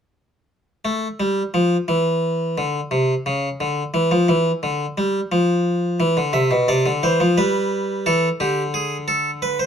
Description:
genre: classical, baroque-style two-part invention for harpsichord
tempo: 87 BPM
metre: 4/4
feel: straight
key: D minor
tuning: A4 = 440 Hz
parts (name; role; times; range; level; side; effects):
- harpsichord; solo; 0.8-9.7 s; B2 to E5; -18 LUFS; equal; none
room: moderate studio reverb, RT60 0.7 s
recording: dark, warm production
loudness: -18 LUFS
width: side -8 dB against mid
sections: 0.5-9.7 A section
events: none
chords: 0.5 N.C.; 6.0 D7sus2; 7.4 G; 8.7 G#dim/D

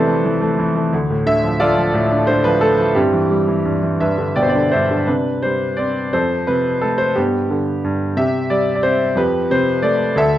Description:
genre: classical, lyrical solo piano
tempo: 56-60 BPM (dotted quarters)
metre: 6/8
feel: rubato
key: C major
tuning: A4 = 438 Hz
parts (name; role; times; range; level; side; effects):
- clear grand piano; solo; 0.0-10.4 s; D2 to G5; -15 LUFS; equal; none
room: moderate recital hall reverb, RT60 1.3 s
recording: dark, warm production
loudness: -15 LUFS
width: side -13 dB against mid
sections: 0.0-5.1 A section; 5.1-10.4 B section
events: grand piano fill 4.0-5.1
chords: 0.0 Fmaj7; 0.9 Dm; 3.0 C/G; 4.0 G; 5.1 Csus2; 6.1 F; 7.2 G; 8.2 C5; 9.2 Fadd9

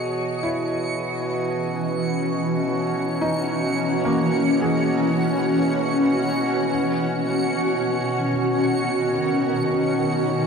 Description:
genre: ambient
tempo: free time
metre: none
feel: none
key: unclear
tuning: A4 = 442 Hz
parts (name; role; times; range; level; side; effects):
- shimmering ambient pad; sustained chords; 0.0-10.5 s; B2 to D#5; -21 LUFS; equal; chorus, built-in reverb
- felt-muted upright piano; arpeggios; 0.0-10.5 s; A#3 to D#6; -30 LUFS; left 1 dB; diffuse ambient delay
- hand-pumped harmonium; drone; 0.0-10.5 s; B2 to F#4; -28 LUFS; right 1 dB; none
- backwards swelling texture; texture; 0.0-10.5 s; C#7; -32 LUFS; right 1 dB; built-in reverb
room: wet huge ambient reverb, RT60 7.7 s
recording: cassette tape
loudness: -20 LUFS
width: side -6 dB against mid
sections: 0.0-10.5 A section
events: none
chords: 0.0 F#7; 6.7 Badd9

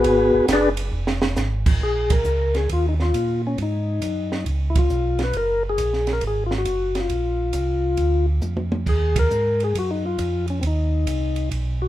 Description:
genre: soul jazz organ trio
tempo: 136 BPM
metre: 4/4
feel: swing 67% on 8ths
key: Bb minor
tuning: A4 = 440 Hz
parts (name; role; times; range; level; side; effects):
- percussive tonewheel organ; melody; 0.0-11.9 s; B3 to D5; -22 LUFS; left 2 dB; slow rotary speaker
- mellow tonewheel organ; bass; 0.0-11.9 s; F1 to Bb2; -23 LUFS; right 1 dB; slow rotary speaker
- compact cocktail drum kit; drums; 0.0-11.7 s; crash cymbal, hi-hat, kick drum, ride cymbal, snare drum, toms; -25 LUFS; right 2 dB; none
room: light reverb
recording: minimal, uncompressed stereo recording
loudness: -19 LUFS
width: side -14 dB against mid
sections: 0.0-1.8 A section; 1.8-11.9 B section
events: tonewheel organ solo 0.0-1.8; drum fill 0.9-1.4, 8.4-8.9; band accent 2.0, 4.7, 9.1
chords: 0.1 G#m7b5; 0.9 Fm; 1.8 Bbmadd11; 3.6 Ab5; 4.5 Db7; 5.3 Gbadd9; 7.1 Bb; 8.9 Ebmadd9; 10.6 Cm

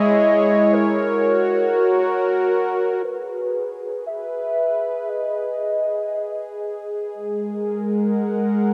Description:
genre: IDM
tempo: 117 BPM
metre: 4/4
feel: straight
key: G# minor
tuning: A4 = 440 Hz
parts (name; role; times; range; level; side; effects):
- warbly nostalgic lead; melody; 0.0-6.9 s; A#4 to E5; -24 LUFS; equal; lush chorus, tape echo
- warm analog pad; sustained chords; 0.0-8.7 s; G#3 to F#5; -23 LUFS; equal; chorus
room: wet huge ambient reverb, RT60 4.1 s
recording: none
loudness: -21 LUFS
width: mono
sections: 0.0-3.0 A section; 3.0-8.7 B section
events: none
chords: 0.0 C#madd9/G#; 1.0 F#; 3.0 G#m; 7.1 F#/G#

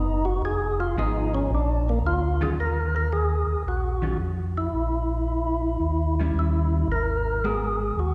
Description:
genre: soul jazz organ trio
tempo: 111 BPM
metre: 4/4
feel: swing 68% on 8ths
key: Eb minor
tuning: A4 = 440 Hz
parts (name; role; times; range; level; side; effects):
- percussive tonewheel organ; melody; 0.0-8.1 s; Bb3 to Bb4; -29 LUFS; equal; slow rotary speaker, overdrive
- mellow tonewheel organ; bass; 0.0-8.1 s; F1 to F2; -27 LUFS; equal; chorus vibrato, slow rotary speaker
- vintage hollow-body jazz guitar; accompaniment; 1.0-7.8 s; Eb3 to Bb4; -35 LUFS; equal; none
room: wet church reverb, RT60 2.5 s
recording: recorded in a church or concert hall, nothing above 11.0 kHz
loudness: -25 LUFS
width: mono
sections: 0.0-2.6 A section; 2.6-8.1 B section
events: tonewheel organ solo 0.0-2.6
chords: 0.4 Fm7b5; 1.5 Bb; 2.6 Ebmadd9; 4.7 N.C.; 5.8 Eb7b9; 6.9 Abm9

